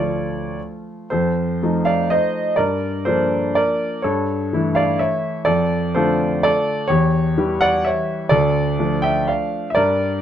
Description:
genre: classical, romantic triple-time dance for piano with dotted rhythms.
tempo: 125 BPM.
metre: 3/4.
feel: uneven beats, rubato.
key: D minor.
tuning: A4 = 435 Hz.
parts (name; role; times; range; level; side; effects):
warm grand piano; solo; 0.0-10.2 s; D2 to G5; -17 LUFS; equal; none.
room: light reverb.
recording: dark, warm production.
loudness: -17 LUFS.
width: side -10 dB against mid.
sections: 0.0-1.1 A section; 1.1-10.2 B section.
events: none.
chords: 0.0 Dm; 1.1 F7; 2.6 Gm7; 4.0 A7/G; 5.5 Dm/F; 6.9 C#dim/E; 8.3 Dm.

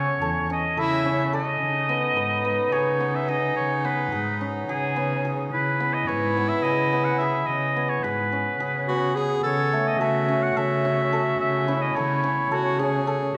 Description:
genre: contemporary instrumental, chamber music in an uneven meter.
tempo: 215 BPM (eighths).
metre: 7/8.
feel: straight.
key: C# minor.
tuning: A4 = 440 Hz.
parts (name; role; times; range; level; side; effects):
clear oboe; melody; 0.0-13.1 s; G#4 to F#5; -29 LUFS; equal; none.
bright clarinet; second line; 0.0-13.4 s; D#4 to A4; -30 LUFS; equal; none.
hammered dulcimer; arpeggios; 0.0-13.4 s; A3 to B4; -29 LUFS; equal; none.
warm cello; bass; 0.0-13.3 s; E2 to C#3; -31 LUFS; equal; none.
room: wet concert hall reverb, RT60 1.7 s.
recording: none.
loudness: -24 LUFS.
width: mono.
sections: 0.0-1.6 A section; 1.6-13.4 B section.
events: none.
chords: 0.0 A; 1.6 C#m9; 9.4 F#m7/C#.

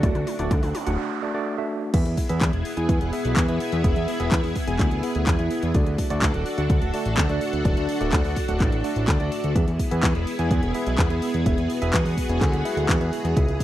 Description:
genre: italo disco.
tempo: 126 BPM.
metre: 4/4.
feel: straight.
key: E mixolydian.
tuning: A4 = 441 Hz.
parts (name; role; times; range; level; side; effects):
string machine, full ensemble; sustained chords; 0.0-13.6 s; A3 to A4; -28 LUFS; equal; ensemble chorus.
barky tine electric piano; stabs; 0.0-13.6 s; A3 to G#5; -28 LUFS; right 1 dB; fast stereo tremolo.
fat analog bass; bass; 0.0-13.6 s; D1 to E2; -25 LUFS; equal; none.
electronic kick drum; drums; 0.0-13.6 s; none; -23 LUFS; equal; overdrive, studio reverb.
house drum kit; drums; 0.0-13.6 s; crash cymbal, handclaps, hi-hat, toms; -30 LUFS; left 1 dB; overdrive, high-pass filter on hats, studio reverb, high-pass filter on toms, high-pass filter on cymbals, high-pass filter on snare.
noise sweep; sound effects; 0.6-1.9 s; none; -35 LUFS; right 6 dB; none.
room: little or no reverb.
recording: dry, close 1970s-style studio recording.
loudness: -20 LUFS.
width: side -13 dB against mid.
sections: 0.0-1.9 A section; 1.9-13.6 B section.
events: drum fill 0.0-1.0; noise sweep 0.6-1.9; break 1.0-1.9.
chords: 0.0 D; 1.9 E; 5.7 D; 9.6 E.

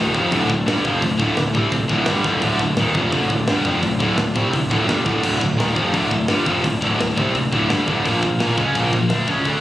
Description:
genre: heavy metal.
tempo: 171 BPM.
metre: 4/4.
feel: straight.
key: D minor.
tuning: A4 = 440 Hz.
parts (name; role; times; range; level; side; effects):
rich studio string section; sustained chords; 0.0-9.6 s; Bb2 to F5; -30 LUFS; left 2 dB; none.
distorted electric guitar; riff; 0.0-9.6 s; D2 to D4; -22 LUFS; right 3 dB; overdrive.
heavy high-gain guitar; riff; 0.0-9.6 s; D2 to D4; -22 LUFS; left 4 dB; distortion.
fuzz picked electric bass; bass; 0.0-9.6 s; D1 to D2; -23 LUFS; left 1 dB; overdrive.
tight metal drum kit; drums; 0.1-9.5 s; crash cymbal, hi-hat, kick drum, snare drum; -26 LUFS; equal; none.
room: studio ambience.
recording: recorded on a phone in the room, club reverb.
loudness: -16 LUFS.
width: side -14 dB against mid.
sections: 0.0-9.6 A section.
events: none.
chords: 0.0 Dm; 8.1 Bb5.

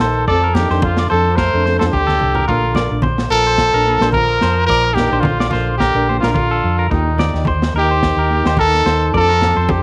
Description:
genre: highlife guitar band.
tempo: 108 BPM.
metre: 4/4.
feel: swing 55% on 16ths.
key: Bb major.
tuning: A4 = 441 Hz.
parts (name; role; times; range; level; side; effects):
warm trumpet; melody; 0.0-9.8 s; Eb4 to C5; -19 LUFS; equal; none.
breathy trombone; second line; 0.0-9.8 s; Bb2 to A3; -29 LUFS; equal; none.
clean electric guitar; arpeggios; 0.0-9.8 s; A4 to D5; -25 LUFS; equal; slapback echo.
hollow-body short-scale fingered electric bass; bass; 0.0-9.8 s; Bb1 to F2; -21 LUFS; equal; none.
nylon-string guitar; accompaniment; 0.3-9.7 s; F3 to Bb4; -27 LUFS; equal; none.
crunchy breakbeat drum kit; drums; 0.3-9.8 s; kick drum, snare drum; -24 LUFS; equal; none.
congas; percussion; 0.3-9.8 s; none; -25 LUFS; equal; none.
room: light reverb, studio reverb.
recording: none.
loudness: -15 LUFS.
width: mono.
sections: 0.0-9.8 A section.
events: drum fill 1.9-2.5.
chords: 0.3 F6; 2.5 Bb; 6.9 Eb; 9.1 F6.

